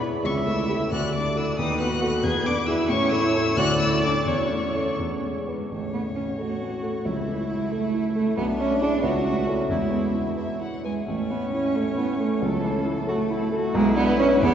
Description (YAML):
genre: quick classical-period movement for piano quartet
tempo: 89 BPM (dotted quarters)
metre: 6/8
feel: rubato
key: A major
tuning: A4 = 439 Hz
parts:
  - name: dark baby grand piano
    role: accompaniment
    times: 0.0-14.5 s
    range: A1 to B4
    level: -26 LUFS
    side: left 1 dB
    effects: none
  - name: rich viola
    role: accompaniment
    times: 0.0-14.5 s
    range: C#4 to E5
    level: -30 LUFS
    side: right 1 dB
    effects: none
  - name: rich cello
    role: second line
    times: 0.2-14.5 s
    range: E3 to G#4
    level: -25 LUFS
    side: right 2 dB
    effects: none
  - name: clear violin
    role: melody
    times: 0.3-14.5 s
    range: A4 to G#6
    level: -31 LUFS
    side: left 4 dB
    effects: none
room: wet cathedral reverb, RT60 4.8 s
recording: heard from further back in the room, nothing above 7.7 kHz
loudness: -22 LUFS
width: side -9 dB against mid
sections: 0.0-5.7 A section; 5.7-14.5 B section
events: none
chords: 0.2 A7/C#; 0.9 D; 1.6 B7/D#; 2.2 E; 2.9 A; 3.6 D5; 4.3 A/E; 5.0 E; 5.7 A; 7.1 A/C#; 8.4 E7/B; 9.0 A/C#; 9.7 E; 11.1 A; 12.4 A/C#; 13.7 E5/B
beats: | 0.24 0.92 | 1.58 2.24 | 2.90 3.57 | 4.27 4.99 | 5.71 6.39 | 7.05 7.71 | 8.37 9.03 | 9.69 10.38 | 11.07 11.75 | 12.43 13.09 | 13.75 14.42